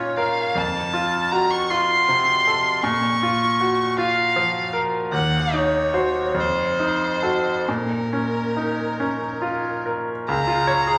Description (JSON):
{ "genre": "classical, romantic duo for violin and grand piano", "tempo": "45-54 BPM (dotted quarters)", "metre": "6/8", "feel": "rubato", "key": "Bb minor", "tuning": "A4 = 440 Hz", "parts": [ { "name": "rich violin", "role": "melody", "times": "0.0-11.0 s", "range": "Bb4 to Db6", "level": "-24 LUFS", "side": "equal", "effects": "none" }, { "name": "bright grand piano", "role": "accompaniment", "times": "0.0-11.0 s", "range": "Db2 to Db5", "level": "-24 LUFS", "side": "equal", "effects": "none" } ], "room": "wet recital hall reverb, RT60 1.5 s", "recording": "none", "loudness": "-21 LUFS", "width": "mono", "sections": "0.0-10.3 A section", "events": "none", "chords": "0.0 Bbm; 0.6 F; 2.8 Bbm; 5.1 Cdim/Eb; 6.4 F7b9; 7.7 Bbm; 10.3 Db" }